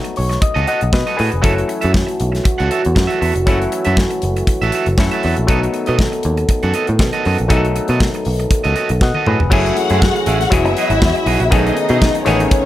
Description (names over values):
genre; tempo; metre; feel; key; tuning
disco; 119 BPM; 4/4; straight; F# dorian; A4 = 440 Hz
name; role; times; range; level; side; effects
auto-wah clav; accompaniment; 0.0-12.7 s; D#3 to G#5; -21 LUFS; left 4 dB; overdrive
electric guitar at the edge of break-up; accompaniment; 0.0-12.6 s; A3 to F#5; -22 LUFS; right 5 dB; none
modern studio drum kit; drums; 0.0-12.6 s; crash cymbal, hi-hat, kick drum, snare drum, toms; -18 LUFS; equal; none
picked electric bass; bass; 0.2-12.5 s; E1 to B2; -18 LUFS; equal; none
dark French horn section; sustained chords; 1.4-12.7 s; C#3 to A4; -22 LUFS; right 1 dB; none
dark studio string section; second line; 9.5-12.7 s; C#4 to F#5; -19 LUFS; left 3 dB; none
room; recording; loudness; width
little or no reverb; none; -13 LUFS; side -14 dB against mid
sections
0.0-9.5 A section; 9.5-12.7 B section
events
clav fill 0.0-1.4; drum fill 9.0-9.5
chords
0.0 B7; 1.4 F#m7; 5.5 B7; 9.5 F#m9; 10.5 Emaj9; 11.5 B13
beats
0.42 0.93 | 1.44 1.94 2.45 2.96 | 3.46 3.97 4.47 4.98 | 5.49 5.99 6.50 7.00 | 7.50 8.01 8.51 9.01 | 9.52 10.02 10.52 11.02 | 11.52 12.02 12.52